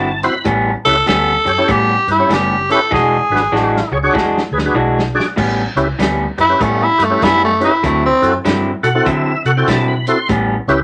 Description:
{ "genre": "electric blues shuffle", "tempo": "98 BPM", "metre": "4/4", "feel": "swing 64% on 8ths", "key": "A mixolydian", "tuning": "A4 = 440 Hz", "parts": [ { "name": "tonewheel organ", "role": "accompaniment", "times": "0.0-10.8 s", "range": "C4 to C6", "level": "-19 LUFS", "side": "equal", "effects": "slow rotary speaker, overdrive, chorus vibrato" }, { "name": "electric guitar through a small old amp", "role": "riff", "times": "0.0-10.6 s", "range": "A2 to F#4", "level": "-20 LUFS", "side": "equal", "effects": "none" }, { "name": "vintage muted fingered electric bass", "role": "bass", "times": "0.0-10.8 s", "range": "E1 to D3", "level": "-24 LUFS", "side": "equal", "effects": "none" }, { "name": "vintage drum kit", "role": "drums", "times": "0.2-10.8 s", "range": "crash cymbal, hi-hat, kick drum, snare drum", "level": "-24 LUFS", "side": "equal", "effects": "none" }, { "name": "growling tenor saxophone", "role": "melody", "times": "0.8-8.4 s", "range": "A3 to A4", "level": "-16 LUFS", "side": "equal", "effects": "none" } ], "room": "moderate small room reverb, RT60 0.5 s", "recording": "none", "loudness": "-15 LUFS", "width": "mono", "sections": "0.0-5.4 A section; 5.4-10.8 B section", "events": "tonewheel organ fill 0.0-0.4, 8.4-10.3; drum fill 2.9-5.4; tenor saxophone solo 5.4-10.8", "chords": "0.4 A9; 2.9 E9; 5.4 A9; 7.8 D9; 10.3 A9" }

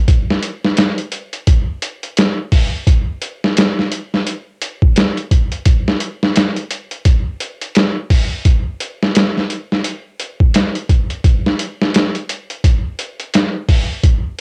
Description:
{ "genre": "trip hop", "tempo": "86 BPM", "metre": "4/4", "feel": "swing 59% on 16ths", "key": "none", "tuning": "none", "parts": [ { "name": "trip hop sampler-style drum kit", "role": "drums", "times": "0.1-14.2 s", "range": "hi-hat, kick drum, snare drum", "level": "-16 LUFS", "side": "equal", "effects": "cassette tape" } ], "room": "moderate studio reverb, RT60 0.6 s", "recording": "home recording on cassette", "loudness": "-16 LUFS", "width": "mono", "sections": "0.0-14.4 A section", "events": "none", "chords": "none" }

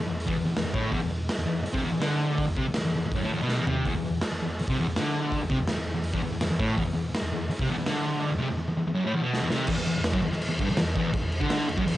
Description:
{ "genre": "garage rock duo or trio", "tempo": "164 BPM", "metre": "4/4", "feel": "straight", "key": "unclear", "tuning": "A4 = 442 Hz", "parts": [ { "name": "fuzz guitar", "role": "riff", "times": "0.0-11.9 s", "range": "E2 to D3", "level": "-26 LUFS", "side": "equal", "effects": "distortion" }, { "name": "raw garage drum kit", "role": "drums", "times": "0.2-12.0 s", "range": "crash cymbal, hi-hat, kick drum, snare drum, toms", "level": "-29 LUFS", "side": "equal", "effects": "cassette tape" } ], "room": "moderate booth ambience, RT60 0.3 s", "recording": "home recording on cassette, nothing above 10.5 kHz", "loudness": "-25 LUFS", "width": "side -15 dB against mid", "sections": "0.0-9.7 A section; 9.7-12.0 B section", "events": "drum fill 3.5-3.8, 9.3-9.7", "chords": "none" }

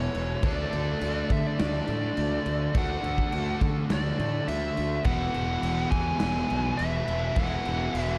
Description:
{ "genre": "hard rock", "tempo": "104 BPM", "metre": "4/4", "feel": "straight", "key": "unclear", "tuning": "A4 = 440 Hz", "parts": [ { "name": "biting lead guitar", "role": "melody", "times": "0.0-8.2 s", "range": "C#5 to G#5", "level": "-34 LUFS", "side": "equal", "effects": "overdrive, slapback echo" }, { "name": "overdriven tonewheel organ", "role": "sustained chords", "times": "0.0-8.2 s", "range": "D4 to F#5", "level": "-47 LUFS", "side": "equal", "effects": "none" }, { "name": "cranked stack guitar", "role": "riff", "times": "0.0-8.2 s", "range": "E2 to D4", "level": "-36 LUFS", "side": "equal", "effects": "overdrive" }, { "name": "cranked stack guitar", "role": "riff", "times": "0.0-8.2 s", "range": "E2 to D4", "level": "-38 LUFS", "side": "equal", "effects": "overdrive" }, { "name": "fuzz fingered electric bass", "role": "bass", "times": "0.0-8.2 s", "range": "E1 to D3", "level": "-33 LUFS", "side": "equal", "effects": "overdrive" }, { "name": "big rock drum kit", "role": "drums", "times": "0.1-8.1 s", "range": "crash cymbal, kick drum, snare drum", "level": "-33 LUFS", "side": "equal", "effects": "none" }, { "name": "heavy high-gain guitar", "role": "riff", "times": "5.1-8.2 s", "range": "E3 to E4", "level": "-40 LUFS", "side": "equal", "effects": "distortion, slapback echo" } ], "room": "light reverb, studio reverb", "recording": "lossy compression artefacts", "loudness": "-27 LUFS", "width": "mono", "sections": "0.0-8.2 A section", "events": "none", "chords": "0.4 D5; 5.1 E" }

